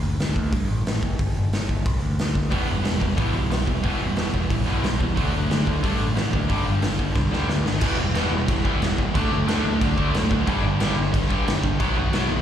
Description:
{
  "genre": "punk rock",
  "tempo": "181 BPM",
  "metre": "4/4",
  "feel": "straight",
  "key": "E minor",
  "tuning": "A4 = 440 Hz",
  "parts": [
    { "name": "growling picked electric bass", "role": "bass", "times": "0.0-12.4 s", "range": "E1 to G2", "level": "-25 LUFS", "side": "equal", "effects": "overdrive" },
    { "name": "raw garage drum kit", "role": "drums", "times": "0.2-12.2 s", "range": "crash cymbal, hi-hat, kick drum, snare drum", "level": "-24 LUFS", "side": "equal", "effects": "none" },
    { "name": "distorted electric guitar", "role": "riff", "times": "2.5-12.4 s", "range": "E2 to D4", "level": "-28 LUFS", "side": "right 1 dB", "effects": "overdrive, slapback echo" },
    { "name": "tight distorted guitar", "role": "riff", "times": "2.5-12.4 s", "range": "E2 to D4", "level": "-29 LUFS", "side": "left 11 dB", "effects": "distortion, slapback echo" },
    { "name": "tight distorted guitar", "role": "riff", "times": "2.5-12.4 s", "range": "G2 to B3", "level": "-29 LUFS", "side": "right 12 dB", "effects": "distortion" }
  ],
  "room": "little or no reverb",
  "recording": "live gig heard through the venue's PA, club reverb",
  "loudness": "-20 LUFS",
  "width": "side -10 dB against mid",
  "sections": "0.0-7.8 A section; 7.8-12.4 B section",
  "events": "drum fill 7.2-7.8",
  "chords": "0.0 D; 1.2 G5; 2.5 Em; 5.2 D; 6.5 G5; 7.8 Em; 9.1 D; 10.5 G5; 11.8 B",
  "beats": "0.19 0.52 0.85 | 1.19 1.52 1.85 2.18 | 2.51 2.84 3.18 3.51 | 3.84 4.17 4.50 4.83 | 5.17 5.50 5.83 6.16 | 6.50 6.83 7.16 7.49 | 7.82 8.15 8.48 8.81 | 9.14 9.47 9.80 10.14 | 10.47 10.80 11.13 11.46 | 11.79 12.12"
}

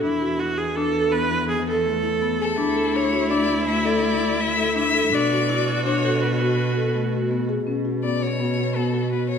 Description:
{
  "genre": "contemporary instrumental, chamber music in an uneven meter",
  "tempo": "165 BPM",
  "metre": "7/4",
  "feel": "straight",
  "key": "B dorian",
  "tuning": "A4 = 440 Hz",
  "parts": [
    { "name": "bright viola", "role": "second line", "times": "0.0-7.5 s", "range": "E4 to B4", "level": "-26 LUFS", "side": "right 4 dB", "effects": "none" },
    { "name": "marimba with medium mallets", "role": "arpeggios", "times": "0.0-9.4 s", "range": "A3 to A4", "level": "-23 LUFS", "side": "left 3 dB", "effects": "none" },
    { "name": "dark cello", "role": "bass", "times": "0.0-9.4 s", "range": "D2 to B2", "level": "-27 LUFS", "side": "right 3 dB", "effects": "none" },
    { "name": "rich violin", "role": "melody", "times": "2.4-9.4 s", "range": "A4 to E5", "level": "-25 LUFS", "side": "left 6 dB", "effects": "none" }
  ],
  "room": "wet recital hall reverb, RT60 1.7 s",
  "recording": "minimal, uncompressed stereo recording",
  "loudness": "-19 LUFS",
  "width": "side -7 dB against mid",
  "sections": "0.0-7.7 A section; 7.7-9.4 B section",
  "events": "none",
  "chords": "0.0 Esus4; 2.6 Dsus2; 5.1 Bm; 7.7 Bsus2",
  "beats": "| 0.03 0.40 0.76 1.13 1.49 1.85 2.22 | 2.58 2.95 3.31 3.67 4.04 4.40 4.77 | 5.13 5.49 5.86 6.22 6.59 6.95 7.31 | 7.68 8.04 8.41 8.77 9.13"
}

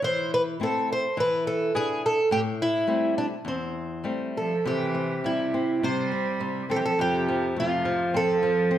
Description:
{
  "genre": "fado-style ballad",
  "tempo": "104 BPM",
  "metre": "4/4",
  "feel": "rubato",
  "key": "A minor, C major from 4.6 s",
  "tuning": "A4 = 441 Hz",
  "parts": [
    { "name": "fingerpicked twelve-string acoustic guitar", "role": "melody", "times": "0.0-8.8 s", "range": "C4 to C5", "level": "-25 LUFS", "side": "right 1 dB", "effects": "none" },
    { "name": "flamenco guitar", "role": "accompaniment", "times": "0.0-8.8 s", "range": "E2 to G#4", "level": "-29 LUFS", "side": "left 2 dB", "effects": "none" },
    { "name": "warm cello", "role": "second line", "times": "4.4-8.8 s", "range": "C3 to G3", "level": "-30 LUFS", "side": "right 3 dB", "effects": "slapback echo" }
  ],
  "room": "moderate recital hall reverb, RT60 1.3 s",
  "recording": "none",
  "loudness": "-23 LUFS",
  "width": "side -11 dB against mid",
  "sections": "0.0-4.6 A section; 4.6-8.8 B section",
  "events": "none",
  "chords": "0.0 Am/E; 1.2 E7; 2.3 Am7; 4.6 C; 7.0 F",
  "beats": "| 0.03 0.59 1.16 1.73 | 2.29 2.86 3.44 4.04 | 4.65 5.24 5.83 6.41 | 6.99 7.57 8.14 8.71"
}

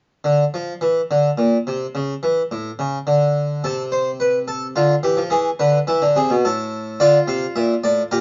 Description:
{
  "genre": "classical, baroque-style 3-part fugue for harpsichord",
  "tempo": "107 BPM",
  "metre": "3/4",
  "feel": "straight",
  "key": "D minor",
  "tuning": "A4 = 438 Hz",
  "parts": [
    { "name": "harpsichord", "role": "solo", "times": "0.2-8.2 s", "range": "A2 to F5", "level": "-19 LUFS", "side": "equal", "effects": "none" }
  ],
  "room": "light reverb",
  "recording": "dark, warm production, nothing above 7.5 kHz",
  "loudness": "-19 LUFS",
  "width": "mono",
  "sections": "0.3-8.2 A section",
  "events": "none",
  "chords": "0.3 N.C.; 3.6 Am/C; 4.8 Dm; 5.3 E; 6.4 N.C.; 7.0 Dm",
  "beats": "| 0.26 0.83 1.39 | 1.95 2.52 3.08 | 3.64 4.20 4.76 | 5.32 5.87 6.43 | 6.99 7.54 8.10"
}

